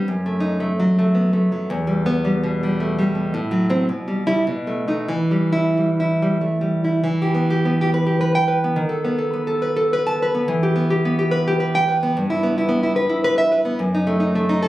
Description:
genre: romantic piece for solo classical guitar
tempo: 88-114 BPM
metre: 3/4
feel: rubato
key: E minor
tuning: A4 = 437 Hz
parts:
  - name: nylon-string guitar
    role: solo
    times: 0.0-14.7 s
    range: E2 to A5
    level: -17 LUFS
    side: equal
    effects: none
room: light reverb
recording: recorded on a phone in the room, club ambience, compression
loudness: -17 LUFS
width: side -16 dB against mid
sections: 0.0-7.1 A section; 7.1-14.7 A section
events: none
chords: 0.1 D#dim/F#; 1.7 Em; 3.3 F#dim/A; 3.9 Em/B; 4.5 B7; 5.1 Em; 8.8 B7/D#; 10.5 Em; 12.2 Em/G; 13.8 D#dim/F#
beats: | 0.10 0.62 1.16 | 1.69 2.24 2.79 | 3.33 3.89 4.48 | 5.09 5.77 6.41 | 7.05 7.65 8.21 | 8.78 9.35 9.92 | 10.50 11.06 11.61 | 12.16 12.70 13.24 | 13.80 14.35

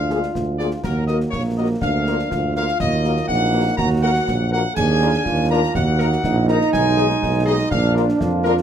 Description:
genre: military-style march for wind band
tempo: 122 BPM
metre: 2/4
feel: straight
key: Eb minor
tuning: A4 = 441 Hz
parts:
  - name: dark trumpet section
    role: melody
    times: 0.0-8.6 s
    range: Bb4 to Bb5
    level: -23 LUFS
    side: left 1 dB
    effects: none
  - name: warm euphonium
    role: second line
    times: 0.0-8.6 s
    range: Bb3 to Ab4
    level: -24 LUFS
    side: right 3 dB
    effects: none
  - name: mellow trombone section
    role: sustained chords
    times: 0.0-8.6 s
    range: F3 to F4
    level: -27 LUFS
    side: right 2 dB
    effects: none
  - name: warm tuba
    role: bass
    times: 0.0-8.6 s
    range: Bb1 to F2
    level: -21 LUFS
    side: right 2 dB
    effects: none
  - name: warm French horn section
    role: accompaniment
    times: 0.1-8.5 s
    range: Bb3 to Bb4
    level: -24 LUFS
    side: left 5 dB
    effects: none
  - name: concert snare drum, concert bass drum and clash cymbals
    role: drums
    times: 0.1-8.6 s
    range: none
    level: -30 LUFS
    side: left 1 dB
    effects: none
room: moderate large studio reverb, RT60 1.0 s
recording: close, detailed microphones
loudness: -16 LUFS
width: side -9 dB against mid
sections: 0.0-8.6 A section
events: none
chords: 0.0 Bb7/D; 0.8 Ebm; 1.8 Bb/D; 2.8 Ebm; 4.8 Bb7/Eb; 5.8 Ebm; 6.7 Abm/Cb; 7.7 Bb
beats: 0.35 | 0.84 1.33 | 1.82 2.32 | 2.81 3.30 | 3.79 4.28 | 4.77 5.26 | 5.75 6.24 | 6.73 7.22 | 7.71 8.20

